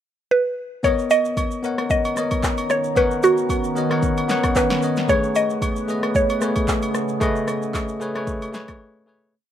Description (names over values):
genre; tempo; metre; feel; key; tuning
amapiano; 113 BPM; 4/4; swing 55% on 16ths; B major; A4 = 440 Hz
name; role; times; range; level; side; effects
mallet-like synth pluck; melody; 0.3-8.8 s; F#4 to D#5; -20 LUFS; right 1 dB; chorus, ping-pong delay
bell-like tine electric piano; accompaniment; 0.8-9.4 s; A3 to F#5; -23 LUFS; left 2 dB; none
deep dark ambient pad; sustained chords; 1.8-9.3 s; C#3 to A#5; -28 LUFS; right 1 dB; chorus, built-in reverb
deep house drum kit; drums; 0.8-8.8 s; handclaps, kick drum, rim click, shaker, snare drum; -25 LUFS; equal; none
agogo bells and woodblock; percussion; 0.8-8.8 s; none; -32 LUFS; right 1 dB; none
room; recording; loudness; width
little or no reverb; rough home demo mix; -18 LUFS; side -10 dB against mid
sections
0.0-0.8 pickup bar; 0.8-9.3 groove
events
fade-out 7.2-9.3; break 8.8-9.3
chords
0.0 N.C.; 0.8 Bmaj9; 5.1 Amaj9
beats
0.31 | 0.84 1.37 1.90 2.43 | 2.96 3.50 4.03 4.56 | 5.09 5.62 6.15 6.68 | 7.21 7.74 8.27 8.80